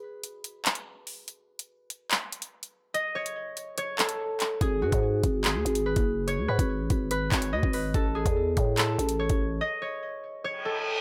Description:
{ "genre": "hip hop, drill", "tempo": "144 BPM", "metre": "4/4", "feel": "half-time", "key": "G# phrygian", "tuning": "A4 = 441 Hz", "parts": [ { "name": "concert harp", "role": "melody", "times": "0.0-11.0 s", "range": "F#4 to D#5", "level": "-32 LUFS", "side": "equal", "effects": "digital delay" }, { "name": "drill drum kit", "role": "drums", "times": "0.2-9.4 s", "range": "handclaps, hi-hat, kick drum", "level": "-30 LUFS", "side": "equal", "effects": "none" }, { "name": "growling 808-style bass", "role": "bass", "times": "4.6-9.6 s", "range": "F#1 to A2", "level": "-32 LUFS", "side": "equal", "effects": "none" }, { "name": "reverse cymbal", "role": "sound effects", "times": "10.6-11.0 s", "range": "none", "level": "-32 LUFS", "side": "equal", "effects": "none" } ], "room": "light reverb", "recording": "none", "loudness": "-28 LUFS", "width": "mono", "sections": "0.0-11.0 A section", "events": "break 0.0-4.6, 9.6-11.0; reverse cymbal 10.6-11.0", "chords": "0.0 N.C.; 4.6 G#m; 7.9 A" }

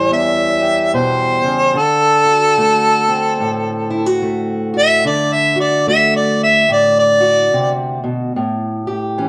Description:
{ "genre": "acoustic country blues, solo or duo", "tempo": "73 BPM", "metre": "4/4", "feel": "swing 61% on 8ths", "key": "unclear", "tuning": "A4 = 440 Hz", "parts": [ { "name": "mellow harmonica", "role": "melody", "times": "0.0-7.8 s", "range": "A4 to E5", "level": "-15 LUFS", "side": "equal", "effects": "cassette tape" }, { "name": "fingerpicked steel-string acoustic guitar", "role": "accompaniment", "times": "0.0-9.3 s", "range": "E2 to G4", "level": "-21 LUFS", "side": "equal", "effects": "cassette tape" } ], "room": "moderate spring reverb, RT60 1.5 s, studio reverb", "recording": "home recording on cassette", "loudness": "-15 LUFS", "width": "mono", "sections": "0.0-9.3 A section", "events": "harmonica solo 0.0-9.3", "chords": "0.0 A7 (rootless); 1.8 D7; 8.3 A7(no3)" }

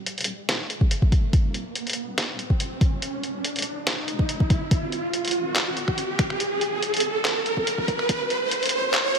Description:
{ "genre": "deep dubstep", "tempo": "142 BPM", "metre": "4/4", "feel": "swing 53% on 16ths, half-time", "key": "unclear", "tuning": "A4 = 439 Hz", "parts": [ { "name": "deep soft wobble bass", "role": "bass", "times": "0.0-9.2 s", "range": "Eb1 to Ab1", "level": "-39 LUFS", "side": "equal", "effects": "chorus, high-pass filter" }, { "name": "riser", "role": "sound effects", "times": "0.0-9.2 s", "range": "none", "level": "-26 LUFS", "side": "right 2 dB", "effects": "none" }, { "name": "trip hop sampler-style drum kit", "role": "drums", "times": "0.1-9.2 s", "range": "finger snaps, handclaps, hi-hat, snare drum", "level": "-27 LUFS", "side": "equal", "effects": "high-pass filter on hats, studio reverb, high-pass filter on snare" }, { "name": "electronic kick drum", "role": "drums", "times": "0.8-8.2 s", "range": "none", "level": "-21 LUFS", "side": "equal", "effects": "overdrive, studio reverb" } ], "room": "light reverb", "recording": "high-pass filter", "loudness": "-22 LUFS", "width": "side -6 dB against mid", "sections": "0.0-9.2 A section", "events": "build-up 0.0-9.2; riser 0.0-9.2; filter sweep 0.0-9.2", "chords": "none" }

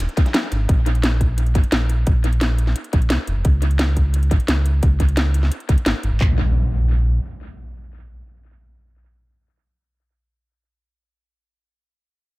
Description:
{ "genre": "liquid drum and bass", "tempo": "174 BPM", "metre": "4/4", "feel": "straight", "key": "unclear", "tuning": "A4 = 440 Hz", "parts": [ { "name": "sub bass with octave", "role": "bass", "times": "0.0-7.2 s", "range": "F1 to Db2", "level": "-18 LUFS", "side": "equal", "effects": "none" }, { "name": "dusty soul sampler-style drum kit", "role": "drums", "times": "0.0-0.6 s", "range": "ride cymbal, snare drum", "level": "-32 LUFS", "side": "equal", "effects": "high-pass filter on hats, high-pass filter on snare, high-pass filter on cymbals, high-pass filter on room, tape echo" }, { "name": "garage drum kit", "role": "drums", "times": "0.0-6.1 s", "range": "hi-hat, snare drum", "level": "-23 LUFS", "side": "equal", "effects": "tape echo" }, { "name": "drum and bass drum kit", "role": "drums", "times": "0.2-6.3 s", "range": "handclaps, kick drum", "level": "-17 LUFS", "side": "equal", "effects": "none" }, { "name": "impact", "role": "sound effects", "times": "6.2-10.5 s", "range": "none", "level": "-26 LUFS", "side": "equal", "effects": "none" } ], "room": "digital ambience", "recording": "echo-heavy mix", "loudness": "-16 LUFS", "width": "side -21 dB against mid", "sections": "0.0-6.2 A section; 6.2-9.0 B section", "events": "none", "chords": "none" }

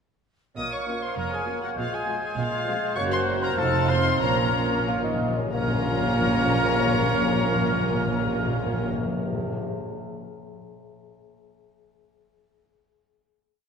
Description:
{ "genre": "quick classical-period movement for symphony orchestra", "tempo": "89-101 BPM", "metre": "2/4", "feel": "straight", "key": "Bb minor", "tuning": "A4 = 445 Hz", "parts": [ { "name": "warm chamber violin section", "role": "melody", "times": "0.6-8.9 s", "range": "F5 to Eb6", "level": "-31 LUFS", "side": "left 4 dB", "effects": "none" }, { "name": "clear oboe", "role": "second line", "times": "0.6-8.9 s", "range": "C5 to F5", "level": "-35 LUFS", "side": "right 1 dB", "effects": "none" }, { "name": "mellow hollow flute section", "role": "second line", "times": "0.6-8.9 s", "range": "F6 to Ab6", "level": "-33 LUFS", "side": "equal", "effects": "none" }, { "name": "warm bassoon", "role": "accompaniment", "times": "0.6-8.9 s", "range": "Ab3 to F4", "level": "-32 LUFS", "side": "right 1 dB", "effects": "none" }, { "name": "warm trumpet", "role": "stabs", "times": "0.6-8.9 s", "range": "F4 to Eb5", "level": "-31 LUFS", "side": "right 1 dB", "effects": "none" }, { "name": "warm chamber double bass section", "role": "bass", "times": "0.6-8.9 s", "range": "F1 to Bb1", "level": "-31 LUFS", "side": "right 3 dB", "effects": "none" }, { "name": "warm studio cello section", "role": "bass", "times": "0.6-8.9 s", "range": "F2 to Bb2", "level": "-33 LUFS", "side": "right 2 dB", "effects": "none" }, { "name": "warm chamber violin section", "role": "second line", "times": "0.9-8.9 s", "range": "C4 to Gb4", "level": "-34 LUFS", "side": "left 4 dB", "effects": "none" }, { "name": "dark symphonic viola section", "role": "accompaniment", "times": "0.9-8.9 s", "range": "F3 to C4", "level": "-33 LUFS", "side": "right 2 dB", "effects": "none" }, { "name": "warm French horn section", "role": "sustained chords", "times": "0.9-8.9 s", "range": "Ab3 to Gb4", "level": "-33 LUFS", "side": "left 1 dB", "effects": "none" }, { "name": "timpani", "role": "percussion", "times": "4.2-9.6 s", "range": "Bb2", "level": "-29 LUFS", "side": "left 2 dB", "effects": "none" } ], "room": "wet church reverb, RT60 2.4 s", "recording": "none", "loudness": "-22 LUFS", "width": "side -6 dB against mid", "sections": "0.6-5.5 A section; 5.5-8.1 final chord", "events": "slowing down 2.4-5.5; timpani fill 4.2-5.5", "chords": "0.6 Bbm; 1.8 Fm/Bb; 3.0 Gb; 3.6 F7; 4.2 Bbm" }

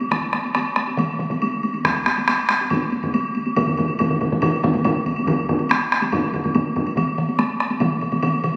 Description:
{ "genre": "japanese traditional, taiko drum ensemble", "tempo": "140 BPM", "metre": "4/4", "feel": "straight", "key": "none", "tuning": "none", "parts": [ { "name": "taiko ensemble", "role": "percussion", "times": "0.0-8.6 s", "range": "none", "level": "-26 LUFS", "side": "equal", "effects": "none" }, { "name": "woodblock", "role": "percussion", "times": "0.0-8.5 s", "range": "none", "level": "-29 LUFS", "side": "equal", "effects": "none" }, { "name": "solo taiko drums", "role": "percussion", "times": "0.1-8.5 s", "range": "none", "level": "-26 LUFS", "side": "equal", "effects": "none" }, { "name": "taiko ensemble", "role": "percussion", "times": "0.1-7.9 s", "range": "none", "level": "-32 LUFS", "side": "equal", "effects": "none" }, { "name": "solo taiko drums", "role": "percussion", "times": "1.9-6.9 s", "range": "none", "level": "-24 LUFS", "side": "equal", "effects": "none" } ], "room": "wet scoring stage reverb, RT60 2.0 s", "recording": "recorded on a phone in the room, studio ambience", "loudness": "-21 LUFS", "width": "mono", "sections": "0.0-5.3 A section; 5.3-8.6 B section", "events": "speeding up 0.0-8.6", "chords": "none" }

